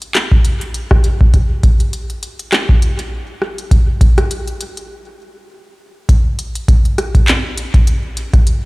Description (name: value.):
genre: IDM.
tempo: 101 BPM.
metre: 4/4.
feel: swing 56% on 16ths.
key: none.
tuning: none.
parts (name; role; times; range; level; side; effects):
organic electronic drum kit; drums; 0.0-8.6 s; handclaps, hi-hat, rim click; -20 LUFS; equal; overdrive, digital delay.
electronic kick drum; drums; 0.3-8.4 s; none; -12 LUFS; equal; overdrive.
room: digital ambience.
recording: played on a big sound system in a bare room, large studio reverb.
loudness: -12 LUFS.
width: side -24 dB against mid.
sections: 0.0-6.1 A section; 6.1-8.7 A section.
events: stop 4.9-6.1.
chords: none.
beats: 0.15 0.74 | 1.34 1.93 2.53 3.12 | 3.71 4.31 4.90 5.50 | 6.09 6.68 7.28 7.87 | 8.47.